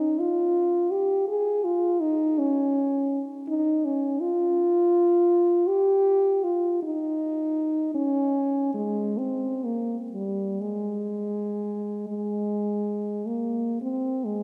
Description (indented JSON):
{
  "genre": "classical, free, expressive piece for unaccompanied French horn",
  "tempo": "28-56 BPM (dotted quarters)",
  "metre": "6/8",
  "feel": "rubato",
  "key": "Ab major",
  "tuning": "A4 = 440 Hz",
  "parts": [
    { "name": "dark French horn", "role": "solo", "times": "0.0-14.4 s", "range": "G3 to Ab4", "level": "-25 LUFS", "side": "equal", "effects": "none" }
  ],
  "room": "wet church reverb, RT60 3.0 s",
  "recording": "dark, warm production",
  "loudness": "-25 LUFS",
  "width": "mono",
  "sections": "0.0-13.8 A section",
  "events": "none",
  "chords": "none"
}